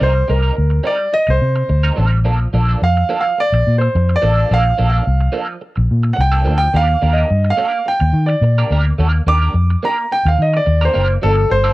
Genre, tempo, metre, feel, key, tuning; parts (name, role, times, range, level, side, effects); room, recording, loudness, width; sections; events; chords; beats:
disco; 107 BPM; 4/4; straight; A4 = 441 Hz
warm concert grand piano; melody; 0.0-11.7 s; A4 to D6; -17 LUFS; right 1 dB
electric guitar at the edge of break-up; accompaniment; 0.0-11.7 s; F3 to Bb4; -23 LUFS; right 3 dB; wah
vintage muted fingered electric bass; bass; 0.0-11.7 s; F#1 to Eb3; -14 LUFS; equal
small room ambience; dry, close 1970s-style studio recording; -13 LUFS; side -18 dB against mid
0.0-11.2 A section
grand piano solo 0.0-11.2
0.0 Cm7; 2.3 Bbmaj7; 6.7 Ebmaj7; 11.2 Gm9
| 0.01 0.57 1.13 1.70 | 2.26 2.82 3.38 3.94 | 4.50 5.06 5.62 6.18 | 6.75 7.31 7.87 8.43 | 8.99 9.55 10.11 10.67 | 11.23